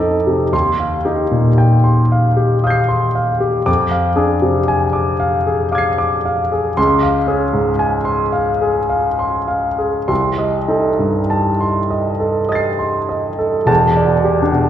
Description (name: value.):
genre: classical, impressionist solo piano.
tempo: 49-59 BPM.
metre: 3/4.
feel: rubato.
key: unclear.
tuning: A4 = 442 Hz.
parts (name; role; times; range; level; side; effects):
clear grand piano; solo; 0.0-14.7 s; E1 to C7; -13 LUFS; equal; none.
room: wet recital hall reverb, RT60 1.2 s.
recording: heard from further back in the room.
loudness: -13 LUFS.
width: side -10 dB against mid.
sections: 0.0-13.7 A section; 13.7-14.7 B section.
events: none.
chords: 0.0 F6; 0.5 Eb69; 3.7 Fm6; 6.8 Dbmaj7; 10.1 Cm6; 13.7 Em7.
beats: | 0.53 1.59 2.65 | 3.68 4.71 5.75 | 6.77 7.80 8.91 | 10.10 11.32 12.51 | 13.69.